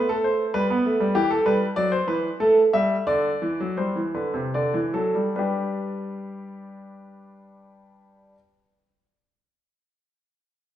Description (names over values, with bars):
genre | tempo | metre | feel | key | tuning
classical, baroque-style two-part invention for grand piano | 70-100 BPM | 3/4 | straight | G major | A4 = 441 Hz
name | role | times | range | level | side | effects
warm baby grand piano | solo | 0.0-8.3 s | C3 to E5 | -21 LUFS | equal | none
room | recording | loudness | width
wet stone room reverb, RT60 1.4 s | heard from further back in the room | -20 LUFS | side -11 dB against mid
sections
0.0-5.3 A section; 5.3-10.4 B section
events
slowing down 0.2-5.3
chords
0.0 N.C.; 0.5 G; 1.1 Em; 2.4 A5; 3.1 G/D; 4.5 D; 5.3 G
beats
0.54 | 1.14 1.75 2.39 | 3.06 3.77 4.53 | 5.35 6.20 7.05 | 7.90